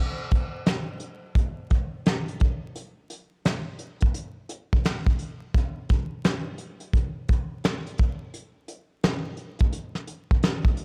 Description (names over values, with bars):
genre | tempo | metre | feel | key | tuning
hip hop | 86 BPM | 4/4 | swing 62% on 16ths | none | none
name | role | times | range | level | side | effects
soft brush drum kit | drums | 0.3-10.8 s | hi-hat, kick drum, snare drum | -26 LUFS | equal | vintage 12-bit sampler grit
room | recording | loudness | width
little or no reverb | dry, gritty hardware recording, transformer saturation, vinyl crackle | -26 LUFS | mono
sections
0.0-10.8 A section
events
none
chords
none